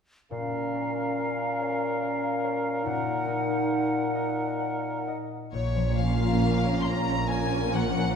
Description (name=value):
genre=classical, slow romantic movement for symphony orchestra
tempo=41-49 BPM (dotted quarters)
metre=6/8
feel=rubato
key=Bb minor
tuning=A4 = 441 Hz
part: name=bright silver concert flute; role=second line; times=0.3-5.2 s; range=F5 to Gb5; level=-33 LUFS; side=left 1 dB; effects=none
part: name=clear clarinet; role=second line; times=0.3-5.2 s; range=Db4 to Eb4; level=-33 LUFS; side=right 3 dB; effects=none
part: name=mellow cor anglais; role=second line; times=0.3-5.2 s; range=Bb4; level=-34 LUFS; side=right 1 dB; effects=none
part: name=warm bassoon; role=accompaniment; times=0.3-5.2 s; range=Bb2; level=-32 LUFS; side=left 2 dB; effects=none
part: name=concert harp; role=arpeggios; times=0.3-8.2 s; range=Bb2 to Gb5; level=-32 LUFS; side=left 5 dB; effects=none
part: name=rich chamber violin section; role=melody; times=5.5-8.2 s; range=Db5 to C6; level=-31 LUFS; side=left 4 dB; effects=none
part: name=rich chamber double bass section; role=bass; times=5.5-8.0 s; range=Bb1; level=-30 LUFS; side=right 4 dB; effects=none
part: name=warm chamber cello section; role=bass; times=5.5-8.0 s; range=Bb2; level=-30 LUFS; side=right 3 dB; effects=none
part: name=warm chamber violin section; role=second line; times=6.0-8.1 s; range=F4 to Bb4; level=-32 LUFS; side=left 2 dB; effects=none
part: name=warm chamber viola section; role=accompaniment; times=6.0-8.1 s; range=Bb3 to Db4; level=-31 LUFS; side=right 4 dB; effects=none
room=wet concert hall reverb, RT60 1.7 s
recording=minimal, uncompressed stereo recording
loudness=-25 LUFS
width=side -7 dB against mid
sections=0.3-5.5 A section; 5.5-8.2 B section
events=none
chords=0.3 Bbm; 2.9 Ebm/Bb; 5.5 Bbm